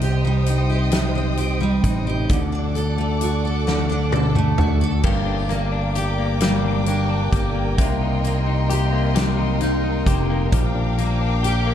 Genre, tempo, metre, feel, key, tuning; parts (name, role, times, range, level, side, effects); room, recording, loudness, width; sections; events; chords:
six-eight pop ballad; 44 BPM (dotted quarters); 6/8; straight; G minor; A4 = 439 Hz
picked steel-string acoustic guitar; accompaniment; 0.0-11.7 s; G2 to A4; -23 LUFS; equal; double-tracked left and right
warm studio string section; sustained chords; 0.0-11.7 s; A4 to Eb6; -29 LUFS; right 1 dB
modern bright fingered electric bass; bass; 0.0-11.7 s; F1 to D2; -22 LUFS; equal
huge arena drum kit; drums; 0.0-11.7 s; crash cymbal, hi-hat, kick drum, snare drum, toms; -24 LUFS; equal
direct-recorded clean electric guitar; arpeggios; 5.0-11.7 s; F3 to G4; -27 LUFS; left 9 dB
little or no reverb; dark, warm production; -18 LUFS; side -10 dB against mid
0.0-5.0 A section; 5.0-11.7 B section
drum fill 3.7-5.0
0.0 Cm; 2.3 D; 5.0 Gm; 7.8 Cm7; 10.5 Gm7/Bb